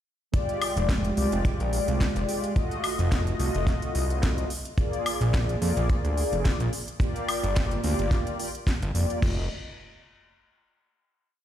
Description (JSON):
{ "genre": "nu-disco, nu disco", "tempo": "108 BPM", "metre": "4/4", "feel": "swing 54% on 16ths", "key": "F dorian", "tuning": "A4 = 440 Hz", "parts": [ { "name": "mellow synth brass", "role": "accompaniment", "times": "0.3-9.4 s", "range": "Ab3 to Eb5", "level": "-29 LUFS", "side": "left 1 dB", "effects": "chorus, ping-pong delay" }, { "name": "house drum kit", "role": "drums", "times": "0.3-9.3 s", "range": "crash cymbal, hi-hat, snare drum, woodblock", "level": "-34 LUFS", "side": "left 1 dB", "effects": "small room ambience" }, { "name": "kick drum", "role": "drums", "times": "0.3-9.3 s", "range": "none", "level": "-26 LUFS", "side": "equal", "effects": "small room ambience" }, { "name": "fat analog bass", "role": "bass", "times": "0.8-9.5 s", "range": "F1 to F2", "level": "-26 LUFS", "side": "equal", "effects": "none" } ], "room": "small room ambience", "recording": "played on a big sound system in a bare room, stone room reverb", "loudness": "-24 LUFS", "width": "side -11 dB against mid", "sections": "0.3-9.2 drop; 9.2-11.4 final chord", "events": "drop 0.3-9.2", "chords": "0.3 Fm69; 2.6 F7b9; 4.5 Bb7; 6.7 Gm7; 9.2 N.C.", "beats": "| 0.34 0.90 1.45 2.01 | 2.56 3.12 3.67 4.23 | 4.78 5.34 5.89 6.45 | 7.01 7.56 8.12 8.67 | 9.23" }